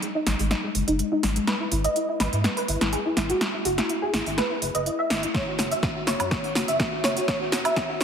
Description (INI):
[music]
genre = progressive house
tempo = 124 BPM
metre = 4/4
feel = straight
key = unclear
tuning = A4 = 439 Hz
[part]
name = soft round pluck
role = arpeggios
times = 0.0-8.0 s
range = G#3 to E5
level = -26 LUFS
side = equal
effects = ensemble chorus, sidechain pumping, digital delay
[part]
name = big-room dance drum kit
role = drums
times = 0.0-8.0 s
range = cabasa, hi-hat, snare drum, woodblock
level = -26 LUFS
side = equal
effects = overdrive, sidechain pumping on hats, sidechain pumping on perc
[part]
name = round analog bass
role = bass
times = 0.3-8.0 s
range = E1 to G#2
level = -29 LUFS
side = equal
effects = sidechain pumping
[part]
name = electronic kick drum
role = drums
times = 5.3-7.9 s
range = none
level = -30 LUFS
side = equal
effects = overdrive
[sound]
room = wet lush hall reverb, RT60 1.8 s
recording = dense, heavily limited modern master, high-pass filter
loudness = -22 LUFS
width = side -7 dB against mid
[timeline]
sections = 0.0-8.0 A section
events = build-up 0.0-8.0; drum fill 0.0-8.0; filter sweep on synth pluck 0.0-8.0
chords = 0.0 F#sus2; 1.5 Eadd9/G#; 5.3 Esus2